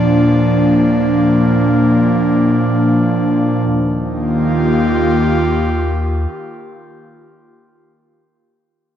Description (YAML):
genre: ambient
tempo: free time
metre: none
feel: none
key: Eb major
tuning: A4 = 439 Hz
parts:
  - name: airy breathy pad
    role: sustained chords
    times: 0.0-7.2 s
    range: Bb2 to G4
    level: -12 LUFS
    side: equal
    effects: chorus
  - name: round analog bass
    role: bass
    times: 0.0-6.3 s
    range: Eb2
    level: -24 LUFS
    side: left 1 dB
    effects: none
room: wet spring reverb, RT60 3.0 s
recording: cassette tape, nothing above 7.5 kHz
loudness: -12 LUFS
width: side -9 dB against mid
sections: 0.0-3.7 A section; 3.7-7.2 B section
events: none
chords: 0.0 Bb/Eb; 3.7 Eb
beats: free time